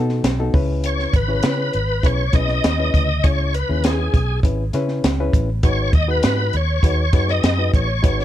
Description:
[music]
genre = uptempo 1960s-style soul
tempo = 100 BPM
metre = 4/4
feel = straight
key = unclear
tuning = A4 = 440 Hz
[part]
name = reed electric piano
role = accompaniment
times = 0.0-8.2 s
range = G#2 to C#5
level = -25 LUFS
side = left 2 dB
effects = none
[part]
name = vintage muted fingered electric bass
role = bass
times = 0.0-8.2 s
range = G#1 to C#3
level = -21 LUFS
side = equal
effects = none
[part]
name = compact cocktail drum kit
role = drums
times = 0.1-8.2 s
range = hi-hat, kick drum, snare drum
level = -19 LUFS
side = equal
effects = none
[part]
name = bright tonewheel organ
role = melody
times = 0.9-8.2 s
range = G#4 to D#5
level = -22 LUFS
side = left 1 dB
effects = overdrive, chorus vibrato, fast rotary speaker
[sound]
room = little or no reverb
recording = dark, warm production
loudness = -16 LUFS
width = side -12 dB against mid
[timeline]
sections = 0.0-8.2 A section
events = none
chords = 0.0 B7; 0.5 C#m7; 5.6 G#m7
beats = 0.24 | 0.84 1.44 2.04 2.64 | 3.24 3.84 4.44 5.04 | 5.64 6.24 6.84 7.44 | 8.04

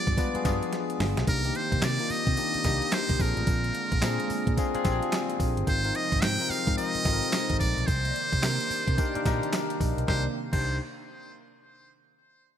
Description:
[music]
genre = R&B, new jack swing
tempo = 109 BPM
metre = 4/4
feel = swing 62% on 16ths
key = C minor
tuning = A4 = 440 Hz
[part]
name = trumpet with metal mute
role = melody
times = 0.0-10.8 s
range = Bb4 to G5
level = -30 LUFS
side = right 1 dB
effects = digital delay
[part]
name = bell-like tine electric piano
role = accompaniment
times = 0.0-10.8 s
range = Bb3 to Bb5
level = -32 LUFS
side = left 5 dB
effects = wide subtle chorus
[part]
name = phased analog pad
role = sustained chords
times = 0.0-10.3 s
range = C3 to D5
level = -36 LUFS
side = right 3 dB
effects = phaser, chorus
[part]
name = vintage muted fingered electric bass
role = bass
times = 0.1-10.8 s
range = G1 to C3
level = -30 LUFS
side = right 1 dB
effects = none
[part]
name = crisp 8-bit digital drum machine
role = drums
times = 0.1-10.6 s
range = crash cymbal, handclaps, hi-hat, kick drum, snare drum, tambourine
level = -29 LUFS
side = right 1 dB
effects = overdrive
[sound]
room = light reverb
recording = bright 1980s-style digital production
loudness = -24 LUFS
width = side -9 dB against mid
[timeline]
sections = 0.0-10.1 A section; 10.1-12.3 B section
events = drum fill 0.7-1.3; tine electric piano fill 9.0-10.1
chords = 0.0 G7b9; 1.3 Cm7; 3.2 Bb7; 5.7 Ab6; 7.9 Cm9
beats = 0.17 0.72 | 1.27 1.82 2.37 2.92 | 3.47 4.02 4.58 5.12 | 5.68 6.23 6.78 7.33 | 7.88 8.43 8.98 9.53 | 10.08 10.63

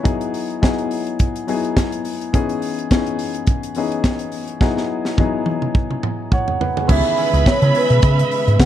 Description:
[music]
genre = disco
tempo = 105 BPM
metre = 4/4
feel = swing 56% on 16ths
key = unclear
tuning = A4 = 441 Hz
[part]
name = warm baby grand piano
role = accompaniment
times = 0.0-8.7 s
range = D#3 to C#5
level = -22 LUFS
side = left 5 dB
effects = none
[part]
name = tight funk drum kit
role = drums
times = 0.1-8.7 s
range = crash cymbal, hi-hat, kick drum, snare drum, toms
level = -19 LUFS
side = equal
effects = none
[part]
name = vibraphone with soft mallets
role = melody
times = 6.3-8.7 s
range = B4 to F#5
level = -19 LUFS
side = right 2 dB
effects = none
[part]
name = warm symphonic violin section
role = second line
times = 6.9-8.7 s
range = B4 to B5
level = -23 LUFS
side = right 3 dB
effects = none
[part]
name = electric guitar with an envelope filter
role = accompaniment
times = 6.9-8.6 s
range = B3 to G#4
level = -28 LUFS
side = right 12 dB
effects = none
[part]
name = warm studio string section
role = sustained chords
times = 6.9-8.7 s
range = C#3 to E5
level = -25 LUFS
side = right 4 dB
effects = none
[part]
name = fingered electric bass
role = bass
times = 6.9-8.7 s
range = C#2 to C#3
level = -15 LUFS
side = right 1 dB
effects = none
[sound]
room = small room ambience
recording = dark, warm production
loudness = -16 LUFS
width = side -11 dB against mid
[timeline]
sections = 0.0-6.9 A section; 6.9-8.7 B section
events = drum fill 4.6-6.9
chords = 0.1 Emaj7; 2.3 C#m7; 4.6 Emaj7; 6.9 C#m7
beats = | 0.05 0.62 1.19 1.76 | 2.33 2.90 3.47 4.04 | 4.61 5.18 5.75 6.32 | 6.89 7.46 8.03 8.59

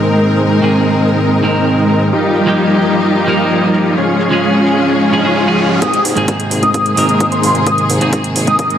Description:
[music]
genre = EDM, festival progressive house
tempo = 130 BPM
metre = 4/4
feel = straight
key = Ab major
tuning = A4 = 440 Hz
[part]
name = clean electric guitar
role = accompaniment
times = 0.0-8.8 s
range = Ab2 to Bb4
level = -16 LUFS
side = right 1 dB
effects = wide subtle chorus, sidechain pumping, tape echo
[part]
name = rich symphonic string section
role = sustained chords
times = 0.0-8.8 s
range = C3 to Bb4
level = -18 LUFS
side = left 1 dB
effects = sidechain pumping
[part]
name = dense compressed supersaw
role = riff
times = 0.0-8.8 s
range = G3 to F5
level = -14 LUFS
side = equal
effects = vintage 12-bit sampler grit, sidechain pumping, low-pass filter, tape echo
[part]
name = electronic hi-hat and shaker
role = drums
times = 0.1-8.8 s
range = none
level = -23 LUFS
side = right 3 dB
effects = low-pass filter on hats, low-pass filter on perc
[part]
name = riser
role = sound effects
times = 4.3-5.8 s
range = none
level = -23 LUFS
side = left 2 dB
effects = none
[part]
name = wide unison lead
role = arpeggios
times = 5.8-8.8 s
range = C6 to Eb6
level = -15 LUFS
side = equal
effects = ensemble chorus, sidechain pumping, tape echo
[part]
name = fat analog bass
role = bass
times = 5.8-8.7 s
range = Ab1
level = -22 LUFS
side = left 1 dB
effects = sidechain pumping, high-pass filter
[part]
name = electronic kick drum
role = drums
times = 5.8-8.7 s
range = none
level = -19 LUFS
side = equal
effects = high-pass filter on kick
[sound]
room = moderate lush hall reverb, RT60 2.5 s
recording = none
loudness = -10 LUFS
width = side -9 dB against mid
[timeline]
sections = 0.0-5.8 A section; 5.8-8.8 B section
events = riser 4.3-5.8; build-up 5.8-8.8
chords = 0.0 Abadd9; 2.1 Ebadd9; 4.0 Db; 5.8 Abadd9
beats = | 0.28 0.74 1.20 1.67 | 2.13 2.59 3.05 3.51 | 3.97 4.43 4.90 5.36 | 5.82 6.28 6.74 7.20 | 7.67 8.13 8.59

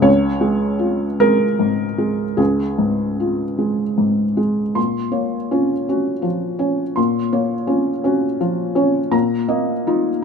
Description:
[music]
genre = neoclassical minimalist piano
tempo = 49-57 BPM (dotted quarters)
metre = 6/8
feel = rubato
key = Bb minor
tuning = A4 = 442 Hz
[part]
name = felt-muted upright piano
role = solo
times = 0.0-10.2 s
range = Db2 to C6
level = -16 LUFS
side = equal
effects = none
[sound]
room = light reverb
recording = minimal, uncompressed stereo recording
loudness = -16 LUFS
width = side -6 dB against mid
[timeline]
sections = 0.0-4.8 A section; 4.8-10.2 B section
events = none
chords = 0.1 Db; 4.8 Bbmadd9; 9.1 Ebsus2/Bb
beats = | 0.07 1.23 | 2.39 3.59 | 4.77 5.88 | 6.97 8.04 | 9.13 10.24

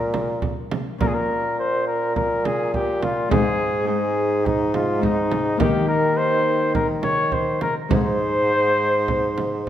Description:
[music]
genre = classical, renaissance-style consort dance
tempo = 104 BPM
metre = 4/4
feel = straight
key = Bb dorian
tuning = A4 = 440 Hz
[part]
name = mellow cornet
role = melody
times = 0.0-9.7 s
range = Eb4 to Db5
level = -22 LUFS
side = left 1 dB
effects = none
[part]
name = Celtic harp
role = accompaniment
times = 0.0-9.7 s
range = Ab2 to Ab4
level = -28 LUFS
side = left 6 dB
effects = none
[part]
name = warm bassoon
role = bass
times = 0.0-9.7 s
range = Ab2 to Eb3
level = -24 LUFS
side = right 1 dB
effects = none
[part]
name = frame drum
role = percussion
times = 0.1-9.7 s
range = none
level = -26 LUFS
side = right 3 dB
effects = none
[sound]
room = wet recital hall reverb, RT60 1.5 s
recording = none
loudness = -19 LUFS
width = side -10 dB against mid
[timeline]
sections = 0.0-1.0 A section; 1.0-9.7 B section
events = none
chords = 0.0 Bbm; 3.3 Ab; 5.6 Eb; 7.9 Ab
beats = 0.42 | 1.00 1.58 2.16 2.74 | 3.31 3.88 4.46 5.03 | 5.60 6.18 6.75 7.33 | 7.92 8.50 9.09 9.67

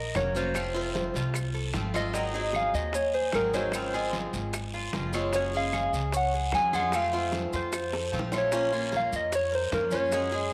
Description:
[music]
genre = latin, Cuban son and guajira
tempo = 150 BPM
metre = 4/4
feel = straight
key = Bb minor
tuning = A4 = 436 Hz
[part]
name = soft struck synth lead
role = melody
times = 0.0-10.5 s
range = Bb4 to Ab5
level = -31 LUFS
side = equal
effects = chorus
[part]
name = Cuban tres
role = arpeggios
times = 0.0-10.5 s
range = Db4 to Eb5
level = -38 LUFS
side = equal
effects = none
[part]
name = upright bass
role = bass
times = 0.0-10.5 s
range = F1 to Gb2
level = -37 LUFS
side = equal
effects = none
[part]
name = picked swing-style acoustic guitar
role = accompaniment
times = 0.2-10.5 s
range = C3 to Ab4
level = -36 LUFS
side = equal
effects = none
[part]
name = bongos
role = percussion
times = 0.2-10.3 s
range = none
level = -42 LUFS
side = equal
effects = none
[part]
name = claves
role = percussion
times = 0.2-8.5 s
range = none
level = -44 LUFS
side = equal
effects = none
[part]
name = congas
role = percussion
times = 0.2-10.5 s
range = none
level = -42 LUFS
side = equal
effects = none
[part]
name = guiro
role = percussion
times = 0.2-10.5 s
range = none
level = -44 LUFS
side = equal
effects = none
[part]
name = maracas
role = percussion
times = 0.2-10.5 s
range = none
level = -45 LUFS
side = equal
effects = none
[sound]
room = wet spring reverb, RT60 2.8 s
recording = none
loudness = -28 LUFS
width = mono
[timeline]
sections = 0.0-8.5 A section; 8.5-10.5 A section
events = drum fill 7.9-8.5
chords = 0.0 Ebm7; 0.6 F; 2.1 Ab7; 3.7 Dbmaj7/Ab; 5.3 Gbsus2; 6.9 F; 8.5 Bbm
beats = 0.15 | 0.55 0.95 1.35 1.75 | 2.14 2.54 2.94 3.34 | 3.74 4.14 4.54 4.94 | 5.34 5.74 6.13 6.53 | 6.93 7.33 7.73 8.13 | 8.53 8.93 9.33 9.73 | 10.13 10.53

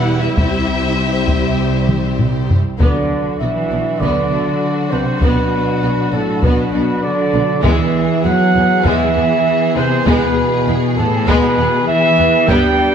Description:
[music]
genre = cinematic, epic orchestral film score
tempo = 99 BPM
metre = 4/4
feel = straight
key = B phrygian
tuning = A4 = 436 Hz
[part]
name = dark symphonic violin section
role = melody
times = 0.0-12.9 s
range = F#4 to F#5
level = -25 LUFS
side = left 4 dB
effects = none
[part]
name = warm symphonic violin section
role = second line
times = 0.0-12.8 s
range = G3 to C5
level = -25 LUFS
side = left 2 dB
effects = none
[part]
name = warm symphonic viola section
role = accompaniment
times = 0.0-12.8 s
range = G3 to B4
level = -23 LUFS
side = right 1 dB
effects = none
[part]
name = dark French horn section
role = sustained chords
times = 0.0-12.9 s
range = E3 to D4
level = -21 LUFS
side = left 6 dB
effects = none
[part]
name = rich symphonic cello section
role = bass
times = 0.0-12.9 s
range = C2 to G3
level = -21 LUFS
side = right 3 dB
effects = none
[part]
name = warm symphonic double bass section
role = bass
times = 0.0-12.6 s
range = E1 to G2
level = -23 LUFS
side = right 2 dB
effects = none
[part]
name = taiko ensemble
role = drums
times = 0.4-12.9 s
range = none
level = -18 LUFS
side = equal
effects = none
[part]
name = bright trombone section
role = sustained chords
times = 2.8-12.9 s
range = A2 to C4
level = -22 LUFS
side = right 4 dB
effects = none
[part]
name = dark trumpet section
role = stabs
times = 2.8-12.9 s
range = A4 to G5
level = -18 LUFS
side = right 2 dB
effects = none
[sound]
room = moderate scoring stage reverb, RT60 1.8 s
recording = none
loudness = -13 LUFS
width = side -7 dB against mid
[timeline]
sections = 0.0-2.8 A section; 2.8-12.9 B section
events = drum fill 1.9-2.8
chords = 0.4 C; 2.8 Bm; 7.6 E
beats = | 0.37 0.98 1.59 2.19 | 2.80 3.40 4.01 4.62 | 5.22 5.83 6.43 7.04 | 7.64 8.25 8.86 9.46 | 10.07 10.67 11.28 11.88 | 12.49

